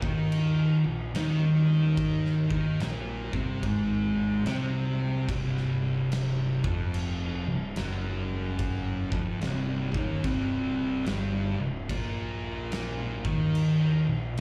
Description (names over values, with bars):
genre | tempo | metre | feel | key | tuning
stoner and doom metal | 73 BPM | 4/4 | swing 64% on 8ths | unclear | A4 = 440 Hz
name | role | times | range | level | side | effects
thick fuzz guitar | riff | 0.0-14.4 s | C2 to Eb4 | -30 LUFS | equal | distortion
fuzz fingered electric bass | bass | 0.0-14.4 s | C1 to Eb2 | -35 LUFS | equal | overdrive
oversized low-tuned drum kit | drums | 0.0-14.4 s | crash cymbal, kick drum, snare drum | -37 LUFS | equal | none
room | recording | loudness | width
small room reverb | live gig heard through the venue's PA, club ambience | -28 LUFS | mono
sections
0.0-14.4 A section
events
none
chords
0.0 Abadd9; 5.3 Cm; 11.9 Absus2 (rootless)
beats
0.32 1.15 | 1.98 2.80 3.63 4.46 | 5.29 6.11 6.94 7.77 | 8.59 9.42 10.24 11.07 | 11.90 12.72 13.55 14.38